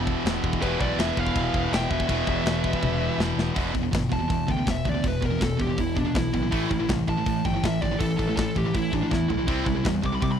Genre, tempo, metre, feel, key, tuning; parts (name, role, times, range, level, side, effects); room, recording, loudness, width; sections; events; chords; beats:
heavy metal; 162 BPM; 4/4; straight; E minor; A4 = 440 Hz
pipe organ, principal chorus; sustained chords; 0.0-3.5 s; E3 to G4; -40 LUFS; left 1 dB
distorted electric guitar; riff; 0.0-10.4 s; E2 to C4; -29 LUFS; right 12 dB; overdrive
high-gain distorted guitar; riff; 0.0-10.4 s; E2 to C4; -29 LUFS; left 11 dB; distortion
growling picked electric bass; bass; 0.0-10.4 s; E1 to C3; -29 LUFS; equal; overdrive
tight metal drum kit; drums; 0.1-10.3 s; china cymbal, hi-hat, kick drum, snare drum, toms; -29 LUFS; equal
high-gain lead guitar; melody; 0.6-10.4 s; D4 to D6; -30 LUFS; equal; distortion, tape echo
high-gain lead guitar; second line; 0.6-3.2 s; G4 to E5; -37 LUFS; right 3 dB; distortion
small room ambience; dry, close 1970s-style studio recording; -22 LUFS; side -8 dB against mid
0.0-3.6 A section; 3.6-10.4 B section
drum fill 2.8-3.6, 9.1-9.5; lead electric guitar solo 3.6-10.4
0.0 Em; 3.6 E5; 6.5 A5; 9.5 C
0.25 | 0.62 0.98 1.35 1.72 | 2.08 2.45 2.82 3.19 | 3.56 3.93 4.30 4.67 | 5.04 5.41 5.78 6.15 | 6.52 6.89 7.26 7.63 | 8.00 8.37 8.74 9.11 | 9.48 9.85 10.22